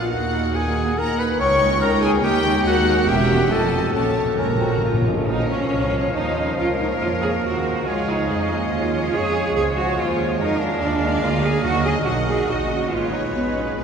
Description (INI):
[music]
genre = quick classical-period movement for symphony orchestra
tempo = 142 BPM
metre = 3/4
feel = rubato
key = Bb minor, Eb minor from 10.4 s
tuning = A4 = 440 Hz
[part]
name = clear studio violin section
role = melody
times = 0.0-13.8 s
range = Ab4 to G5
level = -31 LUFS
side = left 4 dB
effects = none
[part]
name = clear oboe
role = second line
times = 0.0-13.8 s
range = Gb4 to Db5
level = -29 LUFS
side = right 1 dB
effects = none
[part]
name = concert flute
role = second line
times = 0.0-13.8 s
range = Eb5 to Db6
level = -30 LUFS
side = left 2 dB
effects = none
[part]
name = rich studio violin section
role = second line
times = 0.0-13.8 s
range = Ab4 to Db6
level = -30 LUFS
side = left 2 dB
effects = none
[part]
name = mellow French horn section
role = sustained chords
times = 0.0-13.8 s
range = F3 to Db5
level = -25 LUFS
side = left 2 dB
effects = none
[part]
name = rich studio viola section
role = accompaniment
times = 0.1-13.8 s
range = F3 to Db5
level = -29 LUFS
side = right 3 dB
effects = none
[part]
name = clear studio cello section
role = bass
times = 0.1-13.8 s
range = Db2 to Ab4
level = -24 LUFS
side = right 2 dB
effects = none
[part]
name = rich studio double bass section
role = bass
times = 0.1-13.8 s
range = E1 to F2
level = -25 LUFS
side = right 3 dB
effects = none
[part]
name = timpani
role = percussion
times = 3.9-5.9, 11.6-12.2 s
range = Bb2 to Eb3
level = -29 LUFS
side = left 2 dB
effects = none
[part]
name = warm bassoon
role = accompaniment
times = 4.4-13.8 s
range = F3 to Db4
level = -30 LUFS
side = right 1 dB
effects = none
[sound]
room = wet cathedral reverb, RT60 6.6 s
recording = none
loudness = -18 LUFS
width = side -6 dB against mid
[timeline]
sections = 0.0-5.3 A section; 5.3-13.8 B section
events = timpani fill 4.0-5.3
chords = 0.1 Ebm; 1.4 Eb7/Db; 2.7 Ebm; 3.1 Edim7; 3.5 F7; 4.0 Bbm; 6.6 Bbm/Db; 7.9 Db; 10.4 Bb7; 11.6 Ebm; 12.9 Abm